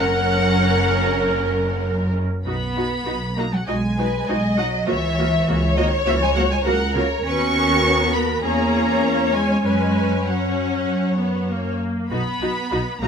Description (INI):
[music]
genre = quick classical-period movement for string orchestra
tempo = 99 BPM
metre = 4/4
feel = straight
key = B major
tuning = A4 = 438 Hz
[part]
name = rich symphonic violin section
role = melody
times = 0.0-13.1 s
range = C#5 to C#6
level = -25 LUFS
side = equal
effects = none
[part]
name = warm symphonic violin section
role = second line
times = 0.0-11.8 s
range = G#4 to D#5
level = -24 LUFS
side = equal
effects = none
[part]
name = clear symphonic viola section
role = accompaniment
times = 0.0-13.1 s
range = A#3 to C#5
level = -24 LUFS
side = left 2 dB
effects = none
[part]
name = rich symphonic cello section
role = bass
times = 0.0-13.1 s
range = F#2 to C#4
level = -24 LUFS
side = right 1 dB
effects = none
[part]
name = warm studio double bass section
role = bass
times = 0.0-13.1 s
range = F#1 to F#2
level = -25 LUFS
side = right 1 dB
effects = none
[sound]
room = light reverb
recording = minimal, uncompressed stereo recording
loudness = -18 LUFS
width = side -6 dB against mid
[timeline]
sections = 0.0-2.5 A section; 2.5-13.1 B section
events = none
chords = 0.0 F#; 2.5 B; 4.9 F#7/C#; 7.3 B/D#; 8.4 C#m/E; 9.7 F#sus4; 10.9 F#; 12.1 B